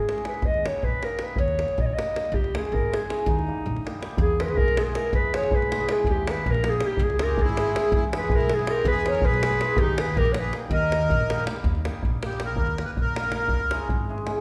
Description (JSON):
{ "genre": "balkan folk, Balkan wedding band", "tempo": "322 BPM (eighths)", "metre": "5/8", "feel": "straight", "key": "Eb phrygian dominant", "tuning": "A4 = 440 Hz", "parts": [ { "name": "dark clarinet", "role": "melody", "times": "0.0-11.4 s", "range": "Eb4 to Eb5", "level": "-29 LUFS", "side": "equal", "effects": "none" }, { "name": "cimbalom", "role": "accompaniment", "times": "0.0-14.4 s", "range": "G3 to Ab4", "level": "-33 LUFS", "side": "equal", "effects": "none" }, { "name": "davul", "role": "percussion", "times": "0.1-14.3 s", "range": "none", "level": "-29 LUFS", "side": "equal", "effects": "none" }, { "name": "upright bass", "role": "bass", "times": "0.4-14.4 s", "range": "Ab1 to E2", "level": "-32 LUFS", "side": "equal", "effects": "none" }, { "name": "accordion", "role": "second line", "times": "7.2-13.9 s", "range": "Eb4 to Cb5", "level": "-32 LUFS", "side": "equal", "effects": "none" } ], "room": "wet recital hall reverb, RT60 1.5 s", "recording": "recorded in a church or concert hall", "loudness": "-24 LUFS", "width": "mono", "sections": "0.0-4.2 A section; 4.2-11.6 B section; 11.6-14.4 C section", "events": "accordion solo 11.6-14.4", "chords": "0.4 Eb; 2.3 Dbm; 3.3 Eb; 4.2 E; 6.1 Eb; 7.0 Dbm; 7.9 E; 9.8 Eb; 13.5 Dbm" }